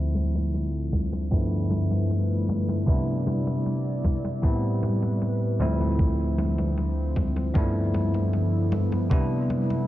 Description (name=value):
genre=vaporwave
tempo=77 BPM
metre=4/4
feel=straight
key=unclear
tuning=A4 = 435 Hz
part: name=bell-like tine electric piano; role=accompaniment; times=0.0-9.9 s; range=D2 to E4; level=-24 LUFS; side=equal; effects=wide subtle chorus, tape echo
part: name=warbly tape-like pad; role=sustained chords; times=0.4-9.9 s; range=D2 to D5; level=-32 LUFS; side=equal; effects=chorus, built-in reverb
part: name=congas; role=drums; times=0.1-9.9 s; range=none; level=-33 LUFS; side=left 1 dB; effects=none
part: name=electronic kick drum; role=drums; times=0.9-9.3 s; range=none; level=-23 LUFS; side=equal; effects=none
room=light reverb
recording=dark, warm production, cassette tape, low-pass filter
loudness=-22 LUFS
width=side -15 dB against mid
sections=0.0-9.9 A section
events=filter sweep 0.0-9.9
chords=0.0 Dm7; 1.3 G13; 2.9 Cmaj9; 4.4 Am9; 5.6 Dm7; 7.6 G13; 9.1 Cmaj9